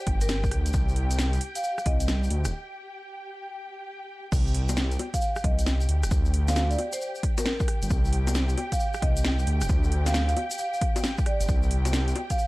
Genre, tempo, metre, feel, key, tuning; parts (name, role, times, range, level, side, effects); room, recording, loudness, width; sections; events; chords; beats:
UK garage, two-step garage; 134 BPM; 4/4; swing 65% on 16ths; A4 = 440 Hz
dark symphonic violin section; sustained chords; 0.0-12.5 s; G4 to G5; -37 LUFS; equal; sidechain pumping
dark detuned saw bass; bass; 0.1-12.1 s; D1 to D2; -25 LUFS; equal
electronic kick drum; drums; 0.1-12.4 s; -26 LUFS; equal; overdrive
house drum kit; drums; 0.1-12.4 s; bongos, crash cymbal, hi-hat, rim click, snare drum; -31 LUFS; left 1 dB
marimba with soft mallets; melody; 0.2-2.0, 5.1-12.5 s; Bb4 to F5; -32 LUFS; right 1 dB
tube shaker; percussion; 0.2-12.5 s; -39 LUFS; left 2 dB
small room ambience; dark, warm production; -23 LUFS; side -20 dB against mid
0.0-4.3 A section; 4.3-12.5 B section
break 2.5-4.3; drop 4.3-12.5
0.0 G5; 0.7 C5; 2.3 Dsus4; 3.4 N.C.; 4.3 C5; 5.9 Dsus4; 7.0 N.C.; 7.9 C5; 9.5 Dmadd11; 10.6 G5; 11.5 C5
0.29 | 0.74 1.19 1.64 2.08 | 2.53 2.98 3.43 3.87 | 4.32 4.77 5.22 5.67 | 6.11 6.56 7.01 7.46 | 7.90 8.35 8.80 9.25 | 9.70 10.14 10.59 11.04 | 11.49 11.93 12.38